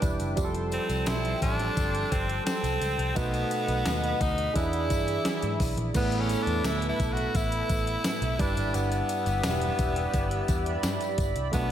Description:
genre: 1980s-style pop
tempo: 86 BPM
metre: 4/4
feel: straight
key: E minor from 6.0 s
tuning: A4 = 437 Hz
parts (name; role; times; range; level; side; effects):
- barky tine electric piano; accompaniment; 0.0-11.7 s; G2 to B4; -32 LUFS; right 4 dB; none
- chorused pulse-width pad; sustained chords; 0.0-11.7 s; G4 to D6; -33 LUFS; equal; none
- vintage muted picked electric bass; bass; 0.0-11.7 s; E1 to G#2; -31 LUFS; equal; none
- clean 12-bit digital drum machine; drums; 0.0-11.7 s; crash cymbal, hi-hat, kick drum, snare drum, tambourine; -31 LUFS; equal; overdrive
- tambourine; percussion; 0.0-11.7 s; none; -45 LUFS; left 8 dB; none
- raspy tenor saxophone; melody; 0.7-11.7 s; B3 to F#4; -31 LUFS; left 1 dB; analog delay
room: wet plate reverb, RT60 2.6 s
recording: dreamy mix soaked in reverb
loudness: -25 LUFS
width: side -10 dB against mid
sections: 0.0-6.0 A section; 6.0-11.7 B section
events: none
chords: 0.4 Fadd9; 3.2 B7; 4.6 E7; 6.0 Asus2; 8.4 Em7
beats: | 0.37 1.07 1.77 2.46 | 3.16 3.86 4.56 5.25 | 5.95 6.65 7.35 8.05 | 8.74 9.44 10.14 10.84 | 11.53

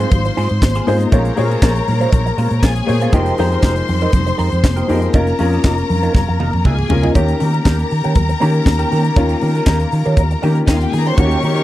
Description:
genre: disco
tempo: 119 BPM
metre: 4/4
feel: straight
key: unclear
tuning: A4 = 438 Hz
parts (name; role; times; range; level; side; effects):
- clear studio string section; second line; 0.0-11.6 s; Eb4 to Db6; -22 LUFS; left 3 dB; none
- electric guitar at the edge of break-up; accompaniment; 0.0-11.6 s; Ab3 to C5; -23 LUFS; right 5 dB; wah, phaser
- warm concert grand piano; accompaniment; 0.0-11.6 s; Eb3 to Db5; -21 LUFS; left 3 dB; none
- fingered electric bass; bass; 0.0-11.6 s; F1 to Eb3; -17 LUFS; equal; none
- tight funk drum kit; drums; 0.0-11.6 s; handclaps, hi-hat, kick drum, snare drum, toms; -14 LUFS; equal; none
- congas; percussion; 0.1-11.6 s; none; -25 LUFS; left 4 dB; none
- warm studio string section; sustained chords; 11.2-11.6 s; Eb3 to G4; -20 LUFS; equal; none
room: little or no reverb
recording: dry, close 1970s-style studio recording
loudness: -13 LUFS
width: side -15 dB against mid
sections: 0.0-7.2 A section; 7.2-11.6 B section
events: drum fill 6.1-7.2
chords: 0.0 Ab6; 1.1 Bbm9; 3.1 Fm11; 5.1 Db69/F; 7.2 Eb7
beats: 0.12 0.62 | 1.12 1.62 2.13 2.63 | 3.13 3.63 4.14 4.64 | 5.14 5.64 6.15 6.65 | 7.16 7.66 8.16 8.66 | 9.17 9.67 10.17 10.68 | 11.18

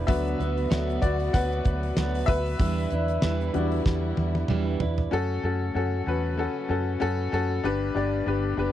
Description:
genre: piano-driven pop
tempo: 95 BPM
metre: 4/4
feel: swing 56% on 16ths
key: unclear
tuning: A4 = 440 Hz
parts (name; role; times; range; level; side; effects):
- bright upright piano; accompaniment; 0.0-8.7 s; G2 to F#5; -28 LUFS; left 4 dB; none
- warm studio string section; sustained chords; 0.0-8.7 s; C#3 to G4; -38 LUFS; right 1 dB; none
- fingerpicked steel-string acoustic guitar; riff; 0.0-5.1 s; D3 to B4; -30 LUFS; right 6 dB; none
- vintage muted fingered electric bass; bass; 0.0-8.7 s; F#1 to F#2; -28 LUFS; equal; none
- damped 70s drum kit; drums; 0.1-5.1 s; hi-hat, kick drum, snare drum, toms; -25 LUFS; equal; none
room: little or no reverb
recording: dry, close 1970s-style studio recording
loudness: -24 LUFS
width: side -12 dB against mid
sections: 0.0-5.1 A section; 5.1-8.7 B section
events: upright piano solo 0.0-5.1; drum fill 3.9-5.1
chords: 0.1 Bm/D; 2.6 Em7; 5.1 F#m; 7.6 G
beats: | 0.08 0.71 1.34 1.97 | 2.60 3.23 3.85 4.48 | 5.11 5.75 6.38 7.00 | 7.64 8.27

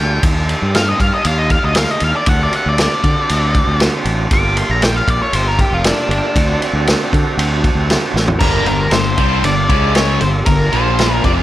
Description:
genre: blues rock power trio and southern rock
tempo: 117 BPM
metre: 4/4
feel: straight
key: G minor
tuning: A4 = 439 Hz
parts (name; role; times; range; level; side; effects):
- octave-fuzz lead guitar; melody; 0.0-11.3 s; D4 to D6; -19 LUFS; left 1 dB; distortion, digital delay
- overdriven tonewheel organ; sustained chords; 0.0-11.4 s; G3 to Bb4; -25 LUFS; right 6 dB; slow rotary speaker
- fuzz fingered electric bass; bass; 0.0-11.4 s; F1 to D3; -18 LUFS; equal; overdrive
- vintage drum kit; drums; 0.2-11.4 s; crash cymbal, kick drum, ride cymbal, snare drum, toms; -16 LUFS; equal; none
- cranked stack guitar; riff; 8.4-11.4 s; F2 to C#4; -18 LUFS; equal; overdrive
room: small room reverb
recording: none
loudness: -12 LUFS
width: side -14 dB against mid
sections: 0.0-8.4 A section; 8.4-11.4 B section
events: lead electric guitar solo 0.0-8.4; drum fill 8.1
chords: 0.2 Ebmaj7; 2.3 D7; 4.3 Gm7; 6.4 D7; 8.4 Gm; 9.7 C#5; 10.2 Gm; 10.7 Bb5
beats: | 0.23 0.74 1.25 1.76 | 2.27 2.78 3.29 3.80 | 4.31 4.82 5.33 5.84 | 6.35 6.86 7.38 7.89 | 8.40 8.92 9.43 9.95 | 10.46 10.98

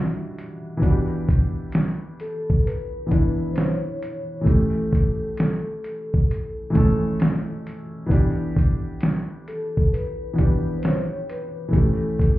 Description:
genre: lo-fi hip hop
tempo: 66 BPM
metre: 4/4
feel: swing 65% on 16ths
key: E dorian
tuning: A4 = 437 Hz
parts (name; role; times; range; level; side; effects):
- felt-muted upright piano; accompaniment; 0.0-12.4 s; E3 to A4; -24 LUFS; equal; low-pass filter
- lo-fi sampler-style drum kit; drums; 0.4-12.4 s; hi-hat, kick drum, snare drum; -20 LUFS; equal; none
- vibraphone with soft mallets; melody; 2.2-12.4 s; A4 to C#5; -31 LUFS; left 2 dB; low-pass filter, tape echo, plate reverb
room: moderate studio reverb, RT60 0.5 s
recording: heard muffled through a wall, club reverb, EQ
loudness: -20 LUFS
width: side -16 dB against mid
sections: 0.8-12.4 A section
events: none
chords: 0.0 Em9; 0.8 Em7; 4.5 A7; 8.1 Em7; 11.7 A7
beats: | 0.83 1.74 2.65 3.56 | 4.46 5.37 6.28 7.19 | 8.10 9.01 9.92 10.83 | 11.74

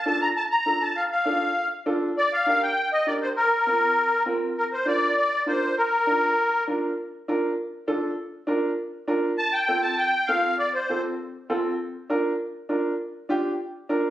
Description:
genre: latin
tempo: 200 BPM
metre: 4/4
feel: straight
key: Bb major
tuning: A4 = 438 Hz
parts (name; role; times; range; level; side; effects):
- musette accordion; melody; 0.0-6.6, 9.4-11.0 s; Bb4 to Bb5; -21 LUFS; left 1 dB; plate reverb
- warm upright piano; accompaniment; 0.1-14.1 s; C4 to Bb4; -26 LUFS; right 1 dB; none
room: moderate large studio reverb, RT60 0.9 s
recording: recorded on a phone in the room, studio reverb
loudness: -22 LUFS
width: side -13 dB against mid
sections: 0.0-4.6 A section; 4.6-14.1 B section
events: none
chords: 0.0 Dm; 2.2 Gm; 3.4 Bbsus2; 4.6 Bb; 9.4 F; 11.8 Bb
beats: 0.06 0.36 0.66 | 0.96 1.26 1.56 1.86 | 2.16 2.46 2.77 3.07 | 3.37 3.67 3.97 4.27 | 4.57 4.87 5.17 5.47 | 5.77 6.08 6.38 6.68 | 6.98 7.28 7.58 7.88 | 8.18 8.48 8.79 9.09 | 9.39 9.69 9.99 10.29 | 10.59 10.89 11.19 11.49 | 11.79 12.09 12.39 12.70 | 13.00 13.30 13.60 13.90

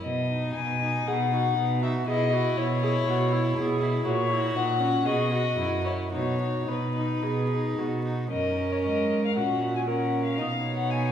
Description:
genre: quick classical-period movement for string quartet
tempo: 108-122 BPM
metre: 4/4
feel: rubato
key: B major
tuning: A4 = 440 Hz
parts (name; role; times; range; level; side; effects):
- dark violin; melody; 0.0-11.1 s; B4 to G#5; -29 LUFS; left 6 dB; none
- warm violin; second line; 0.0-11.1 s; C#4 to F#4; -32 LUFS; left 1 dB; none
- rich cello; bass; 0.0-11.1 s; F#2 to B2; -28 LUFS; right 2 dB; none
- rich viola; accompaniment; 1.1-11.1 s; C#4 to D#5; -31 LUFS; right 2 dB; none
room: wet recital hall reverb, RT60 1.6 s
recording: heard from further back in the room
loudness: -24 LUFS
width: side -9 dB against mid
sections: 0.0-8.3 A section; 8.3-11.1 B section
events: none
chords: 0.0 B; 2.1 C#m7/B; 4.1 F#/A#; 5.1 B; 5.6 F#5; 6.1 B; 8.3 F#; 9.4 F#/A#; 10.4 B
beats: | 0.03 0.55 1.06 1.57 | 2.08 2.58 3.08 3.57 | 4.07 4.56 5.07 5.58 | 6.12 6.68 7.23 7.78 | 8.31 8.84 9.36 9.87 | 10.38 10.89

